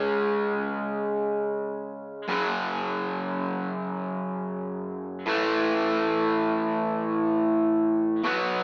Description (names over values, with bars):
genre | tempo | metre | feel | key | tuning
rock | free time | none | none | A major | A4 = 440 Hz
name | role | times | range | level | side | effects
overdriven semi-hollow guitar | solo | 0.0-8.6 s | F#2 to C#4 | -27 LUFS | equal | none
room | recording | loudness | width
wet stone room reverb, RT60 1.3 s | band playing live in one room, small speaker sound | -27 LUFS | mono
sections
0.0-8.2 A section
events
none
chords
0.0 C#5; 2.3 F#5; 5.3 A5